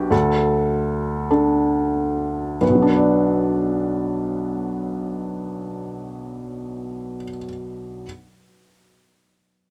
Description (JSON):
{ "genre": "classical", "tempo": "44 BPM (dotted quarters)", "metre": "6/8", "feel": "rubato", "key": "B minor", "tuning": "A4 = 441 Hz", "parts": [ { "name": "felt-muted upright piano", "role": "accompaniment", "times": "0.0-8.1 s", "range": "B1 to D5", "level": "-22 LUFS", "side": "equal", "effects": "none" } ], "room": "light reverb", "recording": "none", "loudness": "-21 LUFS", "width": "mono", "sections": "0.0-2.6 A section; 2.6-8.0 B section", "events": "slowing down 0.0-2.6", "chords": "0.1 D5; 2.6 Bm" }